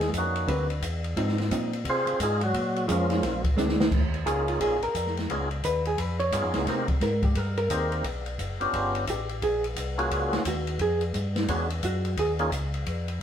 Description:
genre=soul jazz organ trio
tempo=174 BPM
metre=4/4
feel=swing 63% on 8ths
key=Eb mixolydian from 3.9 s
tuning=A4 = 441 Hz
part: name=percussive tonewheel organ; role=melody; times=0.0-12.5 s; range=F3 to C5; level=-28 LUFS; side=equal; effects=slow rotary speaker
part: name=mellow tonewheel organ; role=bass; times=0.0-13.2 s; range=F#1 to C3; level=-30 LUFS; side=equal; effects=overdrive, chorus vibrato, slow rotary speaker
part: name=open jazz drum kit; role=drums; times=0.0-13.1 s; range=crash cymbal, hi-hat, kick drum, ride cymbal, snare drum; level=-30 LUFS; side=equal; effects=none
part: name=vintage hollow-body jazz guitar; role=accompaniment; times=0.5-12.3 s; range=D3 to Db5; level=-28 LUFS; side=right 1 dB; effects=none
room=wet studio reverb, RT60 0.8 s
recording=heard from further back in the room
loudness=-24 LUFS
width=side -9 dB against mid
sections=0.0-3.9 A section; 3.9-13.2 A section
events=tonewheel organ solo 0.0-3.9; drum fill 3.6-3.9; hollow-body jazz guitar solo 3.9-13.2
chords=0.5 D13; 1.2 Ab13; 2.5 Bbm7; 3.2 Bb9; 3.9 Eb9sus4; 5.3 Db9; 6.7 Cm7; 8.0 Gmaj7#11; 8.7 G7#11; 9.4 Gbmaj9; 10.8 Fsus2; 11.5 E13; 12.2 Eb9sus4

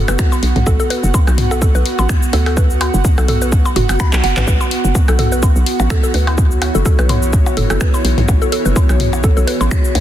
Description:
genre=minimal techno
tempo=126 BPM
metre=4/4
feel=swing 56% on 16ths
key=B dorian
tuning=A4 = 440 Hz
part: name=hollow knocking FM bass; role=bass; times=0.0-10.0 s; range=F#1 to D2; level=-16 LUFS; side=equal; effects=sidechain pumping
part: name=airy breathy pad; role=texture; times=0.0-10.0 s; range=B3 to F#5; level=-21 LUFS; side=right 2 dB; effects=chorus, sidechain pumping
part: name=mallet-like synth pluck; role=riff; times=0.1-9.5 s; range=F#4 to B5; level=-23 LUFS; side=equal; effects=chorus, cassette tape, sidechain pumping, digital delay
part: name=house drum kit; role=drums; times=0.1-10.0 s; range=cabasa, finger snaps, handclaps, hi-hat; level=-24 LUFS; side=left 2 dB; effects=studio reverb, soft clipping on snare
part: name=electronic percussion blips and toms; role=percussion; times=0.1-10.0 s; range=none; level=-22 LUFS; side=left 2 dB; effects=studio reverb, digital delay
part: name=electronic kick drum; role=drums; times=0.2-9.8 s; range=none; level=-14 LUFS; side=equal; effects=studio reverb
part: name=swarming drone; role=texture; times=6.1-10.0 s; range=E3 to G#4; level=-28 LUFS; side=equal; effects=built-in reverb, sidechain pumping
room=digital ambience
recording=dense, heavily limited modern master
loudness=-12 LUFS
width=side -12 dB against mid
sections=0.0-10.0 A section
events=drum fill 4.1-4.5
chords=0.0 B7(no3)

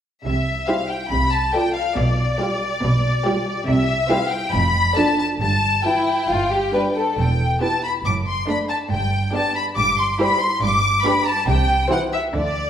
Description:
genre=quick classical-period movement for string orchestra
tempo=140 BPM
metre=4/4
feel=straight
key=C major, G major from 7.2 s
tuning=A4 = 440 Hz
part: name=rich studio violin section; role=melody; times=0.2-12.7 s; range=D5 to D6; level=-21 LUFS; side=left 2 dB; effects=none
part: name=dark studio double bass section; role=bass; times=0.2-12.7 s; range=E1 to D2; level=-24 LUFS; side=right 1 dB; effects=none
part: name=rich studio cello section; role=bass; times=0.3-12.7 s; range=E2 to D3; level=-25 LUFS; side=right 2 dB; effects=none
part: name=rich studio violin section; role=second line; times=0.7-12.2 s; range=E4 to D5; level=-25 LUFS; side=left 1 dB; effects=none
part: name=rich studio viola section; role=accompaniment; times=0.7-12.2 s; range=E3 to F4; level=-25 LUFS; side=right 2 dB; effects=none
room=wet recital hall reverb, RT60 1.6 s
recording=recorded in a church or concert hall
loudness=-17 LUFS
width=side -9 dB against mid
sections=0.3-12.7 A section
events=none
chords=0.3 C; 1.1 Dm7/C; 2.0 G7/B; 3.7 C; 4.5 Dm/F; 5.4 Emadd11/G; 6.3 G5; 7.2 Em; 8.0 D/F#; 8.9 G; 9.8 C/G; 10.6 G; 11.5 C

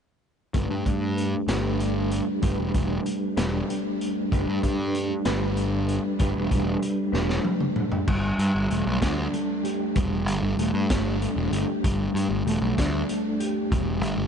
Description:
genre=psychedelic rock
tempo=64 BPM (dotted quarters)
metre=6/8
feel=straight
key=G major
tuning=A4 = 440 Hz
part: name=mellow electric guitar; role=riff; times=0.5-14.3 s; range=G3 to B4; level=-26 LUFS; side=equal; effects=rotary speaker, double-tracked left and right, low-pass filter
part: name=fuzz picked electric bass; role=bass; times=0.5-14.3 s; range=E1 to G2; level=-27 LUFS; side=equal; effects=overdrive
part: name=crunchy breakbeat drum kit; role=drums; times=0.5-14.2 s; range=crash cymbal, hi-hat, kick drum, snare drum, toms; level=-29 LUFS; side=equal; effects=none
room=light reverb, small room ambience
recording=nothing above 10.6 kHz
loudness=-23 LUFS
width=side -7 dB against mid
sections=0.5-8.1 A section; 8.1-14.3 B section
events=filter sweep on clean electric guitar 0.5-8.1; drum fill 7.1-8.1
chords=0.5 Gadd9; 8.1 Gsus2

